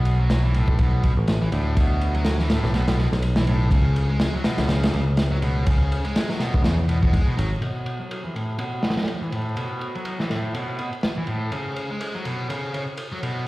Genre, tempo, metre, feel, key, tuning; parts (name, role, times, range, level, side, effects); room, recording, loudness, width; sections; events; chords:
breakbeat, breaks; 123 BPM; 4/4; swing 57% on 16ths; A4 = 440 Hz
overdriven electric guitar; riff; 0.0-13.5 s; A2 to G#3; -27 LUFS; equal; low-pass filter, digital delay
picked electric bass; bass; 0.0-7.6 s; G#1 to E2; -21 LUFS; equal
crunchy breakbeat drum kit; drums; 0.1-13.4 s; kick drum, ride cymbal, snare drum; -25 LUFS; equal; low-pass filter on kick, low-pass filter on cymbals, low-pass filter on snare, low-pass filter on room
light reverb, small room ambience; played on a big sound system in a bare room, stone room reverb, vinyl crackle; -20 LUFS; side -19 dB against mid
0.0-7.6 A section; 7.6-13.5 B section
filter sweep on overdriven electric guitar 7.6-13.5
0.0 Bm7; 3.7 C#m7; 7.6 B5; 11.5 C#5